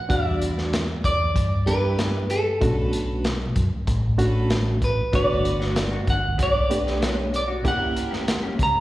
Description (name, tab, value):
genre	straight-eighth soul blues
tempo	95 BPM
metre	4/4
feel	straight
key	B minor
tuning	A4 = 439 Hz
part	clean electric guitar	melody	0.0-8.8 s	A4 to A#5	-25 LUFS	equal	slapback echo
part	barky reed electric piano	accompaniment	0.1-8.4 s	G3 to G4	-27 LUFS	right 2 dB	tremolo, slapback echo
part	bright chamber string section	sustained chords	0.1-8.3 s	E4 to D5	-37 LUFS	left 2 dB	none
part	hollow-body short-scale fingered electric bass	bass	0.1-8.8 s	F#1 to G2	-25 LUFS	equal	none
part	crunchy breakbeat drum kit	drums	0.1-8.7 s	hi-hat, kick drum, snare drum	-26 LUFS	equal	none
part	electric guitar through a small old amp	stabs	5.1-8.8 s	E3 to G4	-33 LUFS	left 2 dB	analog chorus, slapback echo
room	light reverb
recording	live gig heard through the venue's PA, recital hall reverb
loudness	-20 LUFS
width	side -16 dB against mid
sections	0.0-8.8 A section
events	none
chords	0.1 Em7; 2.6 Bm7; 5.1 Gmaj7; 7.6 F#7b9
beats	| 0.09 0.72 1.35 1.98 | 2.61 3.24 3.87 4.50 | 5.13 5.76 6.39 7.02 | 7.65 8.28